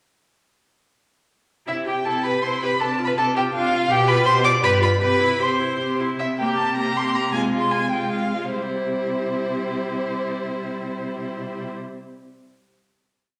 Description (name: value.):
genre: quick classical-period movement for string quartet.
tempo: 140-166 BPM.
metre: 3/4.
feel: rubato.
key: C major.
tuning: A4 = 440 Hz.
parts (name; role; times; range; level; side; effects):
warm violin; melody; 1.7-11.7 s; C5 to D6; -26 LUFS; equal; none.
warm violin; second line; 1.7-11.7 s; E4 to D5; -28 LUFS; equal; none.
clear viola; accompaniment; 1.7-11.7 s; G3 to G4; -30 LUFS; equal; none.
warm cello; bass; 1.7-11.7 s; G2 to C3; -30 LUFS; equal; none.
room: wet recital hall reverb, RT60 1.3 s.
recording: none.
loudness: -22 LUFS.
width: mono.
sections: 1.7-6.2 A section; 6.2-8.5 coda; 8.5-11.0 final chord.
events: slowing down 5.6-8.5.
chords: 1.7 C; 2.8 Dm7/C; 3.9 G7/B; 4.6 G7; 5.0 C; 6.2 C5; 7.3 Fm/C; 8.5 C.